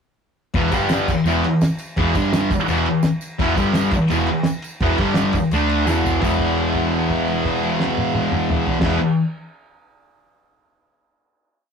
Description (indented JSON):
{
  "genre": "garage rock duo or trio",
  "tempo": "170 BPM",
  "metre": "4/4",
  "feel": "straight",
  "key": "unclear",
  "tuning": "A4 = 440 Hz",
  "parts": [
    { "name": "thick fuzz guitar", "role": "riff", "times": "0.5-9.0 s", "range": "E2 to D4", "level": "-18 LUFS", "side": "equal", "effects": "distortion" },
    { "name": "hollow-body short-scale picked electric bass", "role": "bass", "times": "0.5-9.0 s", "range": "E1 to D2", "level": "-26 LUFS", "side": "right 1 dB", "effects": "none" },
    { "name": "cloth-damped thuddy drum kit", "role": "drums", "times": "0.5-8.9 s", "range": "crash cymbal, kick drum, ride cymbal, snare drum, toms", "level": "-24 LUFS", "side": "equal", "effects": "none" },
    { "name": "tambourine", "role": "percussion", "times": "0.5-6.4 s", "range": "none", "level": "-41 LUFS", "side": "right 5 dB", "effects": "none" }
  ],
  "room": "moderate small room reverb, RT60 0.6 s",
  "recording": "rough rehearsal-room recording, warm saturation",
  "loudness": "-17 LUFS",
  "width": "side -6 dB against mid",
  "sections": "0.5-6.2 riff; 6.2-9.0 final chord",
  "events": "drum fill 5.9-6.2; held note 6.2-8.8",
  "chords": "0.5 E5; 0.7 G5; 1.1 E5; 2.2 G5; 2.5 E5; 3.6 G5; 3.9 E5; 5.0 G5; 5.3 N.C.; 5.5 D5; 5.9 E5"
}